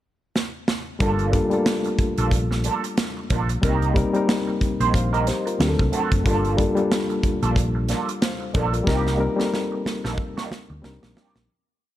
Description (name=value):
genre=lush 1970s-style soul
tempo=92 BPM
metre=4/4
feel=swing 58% on 16ths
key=C dorian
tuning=A4 = 441 Hz
part: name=modern studio drum kit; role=drums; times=0.4-11.5 s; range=hi-hat, kick drum, snare drum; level=-24 LUFS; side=equal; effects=none
part: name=reed electric piano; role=accompaniment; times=1.0-11.5 s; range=F#3 to F5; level=-24 LUFS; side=left 2 dB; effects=fast tremolo
part: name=electric guitar through a small old amp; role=riff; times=1.0-11.4 s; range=Eb3 to C5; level=-28 LUFS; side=right 6 dB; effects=wah
part: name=hollow-body short-scale fingered electric bass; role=bass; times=1.0-11.5 s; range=F#1 to D2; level=-24 LUFS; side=equal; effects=none
room=light reverb, studio reverb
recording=none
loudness=-20 LUFS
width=side -13 dB against mid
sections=0.0-1.0 pickup bar; 1.0-11.5 A section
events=drum fill 0.3-1.0, 8.9-11.5; fade-out 8.9-11.5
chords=0.0 N.C.; 1.0 Gm9; 3.6 Cm7; 5.6 D7; 6.3 Gm9; 8.9 Cm7; 10.8 Cm9